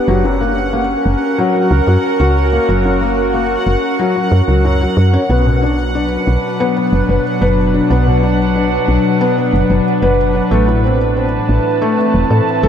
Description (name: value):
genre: IDM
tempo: 92 BPM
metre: 4/4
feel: straight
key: unclear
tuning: A4 = 440 Hz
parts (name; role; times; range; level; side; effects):
- warbly tape-like pad; sustained chords; 0.0-12.7 s; A2 to A5; -16 LUFS; equal; chorus, built-in reverb
- felt-muted upright piano; arpeggios; 0.0-12.7 s; F#2 to B4; -18 LUFS; left 3 dB; vintage 12-bit sampler grit, tape echo
- bubbling stepped-filter texture; texture; 0.0-12.7 s; F#5; -25 LUFS; right 2 dB; chorus, built-in reverb
- woody FM bass; bass; 0.1-12.7 s; E1 to A2; -15 LUFS; equal; none
room: moderate huge ambient reverb, RT60 8.0 s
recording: dreamy mix soaked in reverb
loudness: -12 LUFS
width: side -8 dB against mid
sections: 0.0-12.7 A section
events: none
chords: 0.1 F#; 5.3 Bm; 10.5 Am